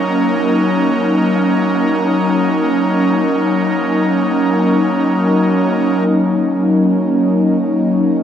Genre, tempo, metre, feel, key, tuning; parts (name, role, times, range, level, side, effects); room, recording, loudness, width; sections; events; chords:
ambient; free time; Eb minor; A4 = 442 Hz
airy breathy pad; sustained chords; 0.0-8.2 s; Gb3 to Bb4; -12 LUFS; equal; chorus
pedal harmonium; drone; 0.0-8.2 s; Eb3 to Bb3; -34 LUFS; equal
wet cathedral reverb, RT60 4.7 s; -12 LUFS; side -9 dB against mid
0.0-6.1 A section; 6.1-8.2 B section
filter sweep on analog synth pad 6.1-8.2
0.0 Ebm7